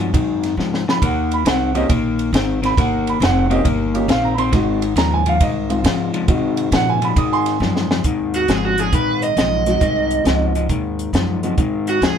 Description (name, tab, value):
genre	electric blues shuffle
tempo	136 BPM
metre	4/4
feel	swing 67% on 8ths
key	Ab mixolydian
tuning	A4 = 440 Hz
part	warm upright piano	accompaniment	0.0-11.6 s	Gb3 to Eb6	-21 LUFS	right 4 dB	none
part	electric guitar at the edge of break-up	riff	0.0-12.2 s	Ab2 to C4	-20 LUFS	left 6 dB	none
part	upright bass	bass	0.0-12.2 s	F1 to C3	-23 LUFS	right 1 dB	none
part	compact cocktail drum kit	drums	0.1-12.2 s	hi-hat, kick drum, ride cymbal, snare drum	-20 LUFS	equal	none
part	raw garage guitar	melody	8.4-12.2 s	Gb4 to Eb5	-19 LUFS	right 5 dB	overdrive
room	light reverb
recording	band playing live in one room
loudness	-15 LUFS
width	side -8 dB against mid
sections	0.0-8.0 A section; 8.0-12.2 B section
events	drum fill 0.6-1.0, 7.6-8.0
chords	0.0 Ab7; 1.0 Eb; 4.5 Ab7